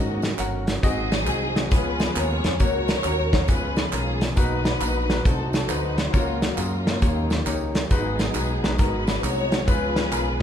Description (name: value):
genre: uptempo gospel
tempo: 136 BPM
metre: 4/4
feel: swing 65% on 8ths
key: F# major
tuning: A4 = 440 Hz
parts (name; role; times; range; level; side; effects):
- warm studio string section; melody; 0.0-10.4 s; A#3 to C#5; -28 LUFS; left 2 dB; none
- clear concert grand piano; accompaniment; 0.0-10.4 s; G#2 to F#5; -30 LUFS; left 3 dB; none
- percussive tonewheel organ; sustained chords; 0.0-10.4 s; D#3 to A#4; -32 LUFS; right 3 dB; slow rotary speaker, overdrive, chorus vibrato
- modern bright fingered electric bass; bass; 0.0-10.4 s; G1 to G#2; -27 LUFS; equal; none
- warm soul drum kit; drums; 0.2-10.3 s; hi-hat, kick drum, snare drum; -23 LUFS; equal; none
- tambourine and handclaps; percussion; 0.2-10.3 s; none; -37 LUFS; right 6 dB; none
room: moderate recital hall reverb, RT60 1.5 s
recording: recorded in a church or concert hall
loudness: -20 LUFS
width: side -9 dB against mid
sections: 0.0-10.4 A section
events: none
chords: 0.0 D#m7; 0.8 G#7; 1.7 C#7; 2.6 F#/C#; 3.5 C#7; 4.4 Bmaj7; 5.3 Cdim7; 6.1 F#maj7/C#; 7.0 D#7; 7.9 G#m7; 9.7 C#7